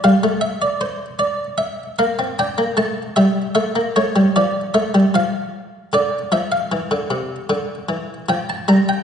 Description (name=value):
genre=classical, baroque-style two-part invention for harpsichord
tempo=76 BPM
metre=4/4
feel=straight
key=D minor from 5.9 s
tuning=A4 = 437 Hz
part: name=buff-stop harpsichord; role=solo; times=0.0-9.0 s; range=C3 to Bb5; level=-16 LUFS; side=equal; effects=none
room=wet scoring stage reverb, RT60 1.5 s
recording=recorded in a church or concert hall, nothing above 10.3 kHz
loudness=-17 LUFS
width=side -8 dB against mid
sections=0.0-5.9 A section; 5.9-9.0 B section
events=none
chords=0.0 Dm; 1.2 Gm; 2.8 A7; 4.4 Dm/F; 5.9 Dm; 7.5 Gm/D